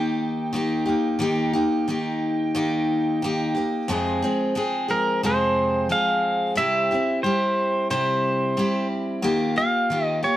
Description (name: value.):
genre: rock.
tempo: 90 BPM.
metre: 4/4.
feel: straight.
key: F minor.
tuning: A4 = 445 Hz.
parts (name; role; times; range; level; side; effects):
pedal steel guitar; melody; 0.0-10.4 s; Bb4 to G5; -23 LUFS; right 1 dB; none.
picked steel-string acoustic guitar; accompaniment; 0.0-10.4 s; F2 to Ab4; -22 LUFS; left 1 dB; none.
room: light reverb.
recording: dark, warm production.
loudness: -20 LUFS.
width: side -13 dB against mid.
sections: 0.0-3.9 A section; 3.9-10.4 B section.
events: none.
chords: 0.0 Eb; 3.9 Fm; 6.6 C; 9.2 Ebadd9.